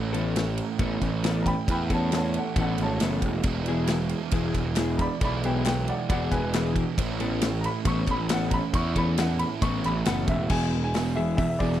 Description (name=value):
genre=indie rock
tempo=136 BPM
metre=4/4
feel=straight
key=A major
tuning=A4 = 441 Hz
part: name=clear upright piano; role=melody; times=0.0-11.8 s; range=A4 to C#6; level=-32 LUFS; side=equal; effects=tape echo
part: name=crunchy overdriven guitar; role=riff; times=0.0-11.8 s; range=E2 to E4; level=-31 LUFS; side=right 8 dB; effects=analog chorus, tape echo
part: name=fuzz picked electric bass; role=bass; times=0.0-11.8 s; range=E1 to E2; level=-28 LUFS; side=equal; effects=overdrive
part: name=electric guitar at the edge of break-up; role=riff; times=0.1-11.8 s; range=E3 to A4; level=-30 LUFS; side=left 5 dB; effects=none
part: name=big rock drum kit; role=drums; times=0.1-11.8 s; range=crash cymbal, hi-hat, kick drum, ride cymbal, snare drum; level=-29 LUFS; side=equal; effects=none
part: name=group handclap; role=percussion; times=3.9-10.2 s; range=none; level=-38 LUFS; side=left 14 dB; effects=none
room=little or no reverb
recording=dry, close 1970s-style studio recording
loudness=-23 LUFS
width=side -12 dB against mid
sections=0.0-10.5 A section; 10.5-11.8 B section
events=upright piano solo 0.0-10.5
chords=0.0 Aadd9; 3.5 E; 7.0 Aadd9; 10.5 E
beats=0.35 0.80 1.24 | 1.68 2.12 2.57 3.01 | 3.45 3.89 4.33 4.78 | 5.22 5.66 6.10 6.54 | 6.98 7.42 7.87 8.31 | 8.75 9.19 9.63 10.07 | 10.51 10.95 11.39